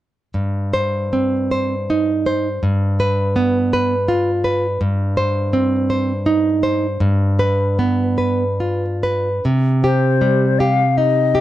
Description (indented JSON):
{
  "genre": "romantic duo for flute and classical guitar",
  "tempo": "46-56 BPM (dotted quarters)",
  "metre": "6/8",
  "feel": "rubato",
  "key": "C minor",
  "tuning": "A4 = 443 Hz",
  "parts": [
    { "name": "nylon-string guitar", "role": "accompaniment", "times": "0.3-11.4 s", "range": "G2 to C5", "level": "-16 LUFS", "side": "right 1 dB", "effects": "none" },
    { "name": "concert flute", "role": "melody", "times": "9.8-11.4 s", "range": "C5 to F5", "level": "-17 LUFS", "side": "left 7 dB", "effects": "none" }
  ],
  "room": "small room ambience",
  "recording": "dry, close 1970s-style studio recording",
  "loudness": "-15 LUFS",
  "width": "side -14 dB against mid",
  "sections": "0.3-9.4 A section; 9.4-11.4 B section",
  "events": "none",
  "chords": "0.3 Cm/G; 2.6 G7; 4.8 Cm/G; 7.0 G7; 9.4 Cm",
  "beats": "| 0.33 1.50 | 2.61 3.71 | 4.80 5.90 | 7.01 8.18 | 9.43 10.59"
}